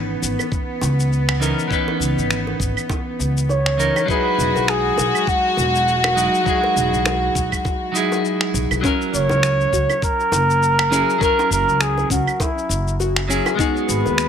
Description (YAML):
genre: sunset chillout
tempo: 101 BPM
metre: 4/4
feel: swing 57% on 16ths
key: unclear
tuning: A4 = 440 Hz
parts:
  - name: clean electric guitar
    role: accompaniment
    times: 0.0-14.3 s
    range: E3 to B4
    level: -23 LUFS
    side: equal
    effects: auto-pan, ping-pong delay
  - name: clear studio string section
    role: sustained chords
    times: 0.0-8.8 s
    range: G#3 to F#4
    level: -24 LUFS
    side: left 1 dB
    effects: none
  - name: upright bass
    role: bass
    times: 0.0-14.3 s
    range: E1 to D#2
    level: -22 LUFS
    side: equal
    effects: none
  - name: electronic cabasa, claves and finger snaps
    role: drums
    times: 0.2-14.3 s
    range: none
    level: -24 LUFS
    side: equal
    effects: none
  - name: bongos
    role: percussion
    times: 0.4-14.2 s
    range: none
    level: -31 LUFS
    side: right 2 dB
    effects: none
  - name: electronic kick drum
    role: drums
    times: 0.5-13.7 s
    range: none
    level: -24 LUFS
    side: equal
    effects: none
  - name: trumpet with bucket mute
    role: melody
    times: 3.5-14.3 s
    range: E4 to C#5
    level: -20 LUFS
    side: right 2 dB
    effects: digital delay
  - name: soft round pluck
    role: arpeggios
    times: 8.8-13.9 s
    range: C#4 to A#4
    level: -25 LUFS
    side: left 5 dB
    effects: chorus, ping-pong delay
room: light reverb, small room ambience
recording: none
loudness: -16 LUFS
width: side -8 dB against mid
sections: 0.0-8.8 A section; 8.8-14.3 B section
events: none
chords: 0.0 C#m9; 4.1 Emaj9; 8.8 F#7; 13.6 G#m7